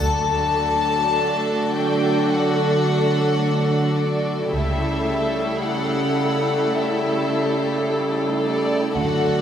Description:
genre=classical, slow romantic movement for symphony orchestra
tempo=54 BPM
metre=4/4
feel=rubato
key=D major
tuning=A4 = 439 Hz
part: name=warm symphonic violin section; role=melody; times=0.0-9.4 s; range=D5 to A5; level=-25 LUFS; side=left 5 dB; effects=none
part: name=warm studio violin section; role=second line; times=0.0-9.4 s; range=F#4 to A4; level=-27 LUFS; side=left 1 dB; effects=none
part: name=dark symphonic viola section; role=accompaniment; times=0.0-9.4 s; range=A3 to E4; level=-25 LUFS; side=right 1 dB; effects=none
part: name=mellow French horn section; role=sustained chords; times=0.0-9.4 s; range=F#3 to A4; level=-25 LUFS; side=equal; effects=none
part: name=rich symphonic double bass section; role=bass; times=0.0-9.4 s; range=C#2 to D2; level=-27 LUFS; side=right 1 dB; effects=none
part: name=warm symphonic cello section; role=bass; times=0.0-9.4 s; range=C#3 to D3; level=-25 LUFS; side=right 2 dB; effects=none
room=wet recital hall reverb, RT60 1.6 s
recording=recorded in a church or concert hall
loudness=-18 LUFS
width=side -9 dB against mid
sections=0.0-9.4 A section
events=none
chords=0.0 D; 4.5 A7/C#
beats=1.17 2.31 3.42 | 4.54 5.67 6.77 7.88 | 8.97

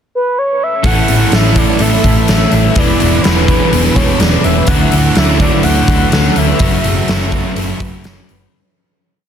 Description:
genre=rock, shoegaze and dream pop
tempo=125 BPM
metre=4/4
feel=straight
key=A major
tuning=A4 = 440 Hz
part: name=reedy FM lead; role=melody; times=0.2-8.1 s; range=B4 to F#5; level=-18 LUFS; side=equal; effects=chorus, digital delay
part: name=ensemble organ-string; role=sustained chords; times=0.8-8.5 s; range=A4 to E6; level=-24 LUFS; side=equal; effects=ensemble chorus
part: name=fingerpicked twelve-string acoustic guitar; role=arpeggios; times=0.8-8.5 s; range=E4 to B4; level=-23 LUFS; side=right 7 dB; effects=ensemble chorus, digital delay
part: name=overdriven electric guitar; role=riff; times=0.8-8.5 s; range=A2 to A4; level=-18 LUFS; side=right 9 dB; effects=reverse reverb
part: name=thick fuzz guitar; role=riff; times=0.8-8.5 s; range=E2 to D4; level=-17 LUFS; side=left 9 dB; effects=distortion, lush chorus
part: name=hollow-body short-scale fingered electric bass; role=bass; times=0.8-8.5 s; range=E1 to D2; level=-16 LUFS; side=equal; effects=none
part: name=huge arena drum kit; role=drums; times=0.8-8.4 s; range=hi-hat, kick drum, snare drum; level=-14 LUFS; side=equal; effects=none
room=little or no reverb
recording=dense, heavily limited modern master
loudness=-9 LUFS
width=side -8 dB against mid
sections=0.0-0.8 pickup bar; 0.8-8.5 verse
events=fade-out 6.6-8.5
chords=0.0 N.C.; 0.8 A; 2.8 E7; 4.7 Dadd9; 6.6 F#m7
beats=0.36 | 0.84 1.33 1.81 2.29 | 2.77 3.25 3.73 4.21 | 4.68 5.17 5.64 6.12 | 6.60 7.08 7.57 8.05

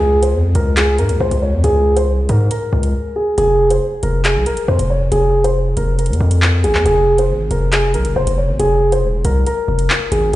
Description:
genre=hip hop, drill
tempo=138 BPM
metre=4/4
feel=half-time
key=F minor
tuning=A4 = 440 Hz
part: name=dark concert grand piano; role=melody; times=0.0-10.4 s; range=Ab4 to Db5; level=-16 LUFS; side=equal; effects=low-pass filter, tape echo
part: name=distorted 808-style bass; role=bass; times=0.0-10.4 s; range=Eb1 to Ab2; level=-15 LUFS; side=equal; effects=distortion
part: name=drill drum kit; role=drums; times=0.2-10.4 s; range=handclaps, hi-hat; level=-21 LUFS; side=equal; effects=none
room=light reverb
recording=played on a big sound system in a bare room, large studio reverb, nothing above 10.5 kHz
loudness=-13 LUFS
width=side -15 dB against mid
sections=0.0-10.4 A section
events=break 2.9-3.4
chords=0.0 Db5; 3.4 Fm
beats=0.34 0.77 1.20 | 1.64 2.07 2.51 2.94 | 3.38 3.81 4.25 4.68 | 5.12 5.55 5.99 6.42 | 6.86 7.29 7.73 8.16 | 8.60 9.03 9.46 9.90 | 10.34

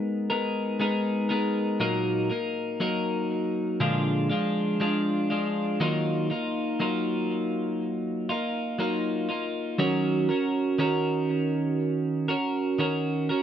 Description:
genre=pop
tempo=60 BPM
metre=4/4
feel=straight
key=Eb minor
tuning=A4 = 440 Hz
part: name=twelve-string electric guitar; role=solo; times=0.0-13.4 s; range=Bb2 to Bb4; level=-24 LUFS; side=equal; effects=tape echo
room=moderate studio reverb, RT60 0.5 s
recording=rough home demo mix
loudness=-24 LUFS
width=side -9 dB against mid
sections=0.0-13.4 A section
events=none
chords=0.0 Abmadd9; 1.8 Ebm/Bb; 3.8 Bb7; 5.8 Ebmadd9; 9.8 Gb6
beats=0.80 | 1.80 2.80 3.80 4.80 | 5.80 6.80 7.80 8.80 | 9.80 10.80 11.80 12.80

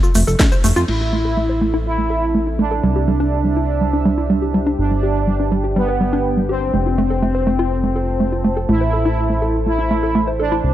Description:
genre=melodic techno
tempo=123 BPM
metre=4/4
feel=straight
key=A minor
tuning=A4 = 440 Hz
part: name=warbly dusty pluck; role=arpeggios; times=0.0-10.6 s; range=G3 to C5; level=-20 LUFS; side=right 1 dB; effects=chorus, cassette tape, sidechain pumping, analog delay
part: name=cabasa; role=percussion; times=0.0-0.9 s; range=none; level=-30 LUFS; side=right 3 dB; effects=none
part: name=fat analog bass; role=bass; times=0.2-10.7 s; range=F1 to F2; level=-20 LUFS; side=equal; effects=sidechain pumping
part: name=techno drum kit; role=drums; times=0.2-1.0 s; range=crash cymbal, hi-hat, snare drum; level=-24 LUFS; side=left 1 dB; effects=overdrive, low-pass filter on snare, sidechain pumping on hats, low-pass filter on hats, sidechain pumping on toms, low-pass filter on toms, sidechain pumping on cymbals, low-pass filter on cymbals
part: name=electronic kick drum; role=drums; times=0.4-0.5 s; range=none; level=-15 LUFS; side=equal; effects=overdrive
part: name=analog synth brass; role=melody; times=0.9-10.7 s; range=B3 to E4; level=-20 LUFS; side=right 2 dB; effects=chorus, sidechain pumping, analog delay
part: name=deep dark ambient pad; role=sustained chords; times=1.7-10.7 s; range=C4 to A5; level=-27 LUFS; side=left 1 dB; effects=chorus, built-in reverb, sidechain pumping
room=little or no reverb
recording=dry, gritty hardware recording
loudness=-15 LUFS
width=side -12 dB against mid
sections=0.9-10.7 A section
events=band accent 0.4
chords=0.0 F; 0.9 Am; 2.8 Cadd9; 4.8 G; 6.7 F; 8.7 Am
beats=0.40 | 0.88 1.37 1.86 2.35 | 2.83 3.32 3.81 4.30 | 4.79 5.27 5.76 6.25 | 6.74 7.22 7.71 8.20 | 8.69 9.18 9.66 10.15 | 10.64

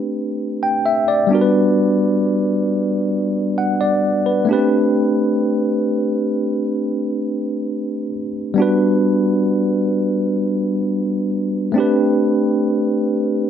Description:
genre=R&B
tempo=66 BPM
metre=4/4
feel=straight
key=G major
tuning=A4 = 441 Hz
part: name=tine electric piano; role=solo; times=0.0-13.5 s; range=G3 to G5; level=-16 LUFS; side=equal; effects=fast stereo tremolo
room=moderate concert hall reverb, RT60 1.7 s, digital ambience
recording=none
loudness=-16 LUFS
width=side -9 dB against mid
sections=0.0-8.6 A section; 8.6-13.5 B section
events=none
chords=0.0 Am11; 1.3 Gmaj7; 4.5 Am11; 8.6 Gmaj7; 11.8 Am11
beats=0.39 | 1.30 2.21 3.12 4.03 | 4.94 5.85 6.75 7.66 | 8.57 9.48 10.39 11.30 | 12.21 13.12

